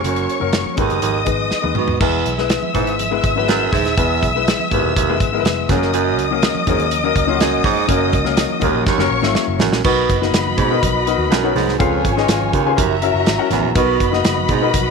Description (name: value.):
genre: uptempo 1960s-style soul.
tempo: 123 BPM.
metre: 4/4.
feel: straight.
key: B major.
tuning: A4 = 440 Hz.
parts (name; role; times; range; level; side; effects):
warm studio string section; second line; 0.0-14.9 s; E#4 to E6; -21 LUFS; left 2 dB; none.
warm baby grand piano; accompaniment; 0.0-14.9 s; F#3 to G#5; -20 LUFS; left 14 dB; none.
warm baritone saxophone; riff; 0.0-14.7 s; D#2 to B2; -20 LUFS; right 13 dB; none.
vintage muted picked electric bass; bass; 0.0-14.9 s; D#1 to C#3; -24 LUFS; right 1 dB; none.
natural country drum kit; drums; 0.0-14.9 s; crash cymbal, hi-hat, kick drum, snare drum, toms; -20 LUFS; right 1 dB; none.
congas; percussion; 0.0-14.9 s; none; -32 LUFS; right 12 dB; none.
room: light reverb.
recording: 1960s-style stereo with parts hard left and right.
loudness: -14 LUFS.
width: side -5 dB against mid.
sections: 0.0-2.0 A section; 2.0-9.8 B section; 9.8-14.9 C section.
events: drum fill 1.5-2.0, 8.9-9.8.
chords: 0.0 F#; 0.8 G#m; 2.0 E; 5.7 F#; 9.8 Bmaj7; 11.8 C#7; 12.8 F#7; 13.8 Bmaj7.